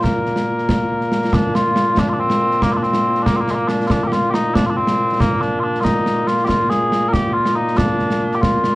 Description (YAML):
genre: scottish traditional, Scottish pipe music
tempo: 93 BPM (dotted quarters)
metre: 6/8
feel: straight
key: Bb mixolydian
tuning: A4 = 440 Hz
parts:
  - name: mellow small bagpipes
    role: melody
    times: 0.0-8.8 s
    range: Bb2 to Bb4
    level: -17 LUFS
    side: equal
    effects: none
  - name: concert snare drum and concert bass drum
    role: drums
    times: 0.0-8.7 s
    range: none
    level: -19 LUFS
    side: equal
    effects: none
room: light reverb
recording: worn, warbling old tape, cassette tape, warbly pitch drift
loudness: -15 LUFS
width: side -20 dB against mid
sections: 0.0-1.3 A section; 1.3-8.8 A section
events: none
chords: none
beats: | 0.04 0.68 | 1.33 1.97 | 2.62 3.26 | 3.91 4.55 | 5.20 5.84 | 6.49 7.13 | 7.78 8.42